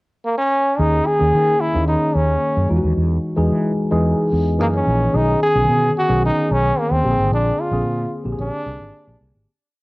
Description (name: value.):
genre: polished 1980s jazz-funk pop.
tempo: 110 BPM.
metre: 4/4.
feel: straight.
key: unclear.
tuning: A4 = 440 Hz.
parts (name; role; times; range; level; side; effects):
brilliant trombone; melody; 0.3-9.2 s; A#3 to G#4; -18 LUFS; equal; cassette tape.
tine electric piano; accompaniment; 0.8-9.5 s; D3 to G#4; -20 LUFS; left 1 dB; analog chorus, cassette tape.
fretless electric bass; bass; 0.8-9.4 s; G#1 to E3; -20 LUFS; equal; none.
room: light reverb, small room ambience.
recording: home recording on cassette.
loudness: -15 LUFS.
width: side -22 dB against mid.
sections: 0.0-0.8 pickup bar; 0.8-9.5 verse.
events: fade-out 7.3-9.5.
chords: 0.0 N.C.; 0.8 D#7sus4; 2.7 Emaj9; 4.6 F#13; 5.1 B69; 7.0 A#9.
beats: 0.26 | 0.80 1.34 1.88 2.42 | 2.97 3.51 4.05 4.60 | 5.14 5.68 6.23 6.77 | 7.31 7.86 8.40 8.94.